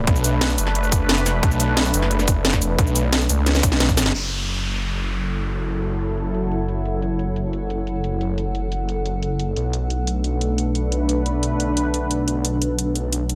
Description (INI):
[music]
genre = dark technical drum and bass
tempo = 177 BPM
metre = 4/4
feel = straight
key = F# minor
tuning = A4 = 440 Hz
[part]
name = sweeping resonant pad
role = sustained chords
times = 0.0-13.4 s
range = F#3 to B4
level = -28 LUFS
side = equal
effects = chorus, sidechain pumping
[part]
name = snarling distorted saw bass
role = bass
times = 0.0-13.4 s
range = F#1 to C#2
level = -25 LUFS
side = equal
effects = distortion, sidechain pumping
[part]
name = drum and bass drum kit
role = drums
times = 0.1-13.4 s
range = crash cymbal, hi-hat, shaker, snare drum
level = -24 LUFS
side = equal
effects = overdrive, low-pass filter on hats, low-pass filter on perc, low-pass filter on snare, low-pass filter on cymbals
[part]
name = electronic kick drum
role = drums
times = 0.1-4.0 s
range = none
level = -21 LUFS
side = equal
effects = overdrive
[part]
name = downlifter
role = sound effects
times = 4.1-6.9 s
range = none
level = -32 LUFS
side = equal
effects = none
[part]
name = granular cloud pad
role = texture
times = 5.3-13.4 s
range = D4 to F#5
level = -31 LUFS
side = equal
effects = built-in reverb, sidechain pumping
[sound]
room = light reverb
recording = none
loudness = -21 LUFS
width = mono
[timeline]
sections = 0.0-4.1 A section; 4.1-13.4 B section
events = drop 0.0-4.1; drum fill 3.5-4.1; band accent 4.1; filter sweep on drum 4.1-13.4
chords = 0.0 Bm7; 4.1 F#m7; 9.6 Bm7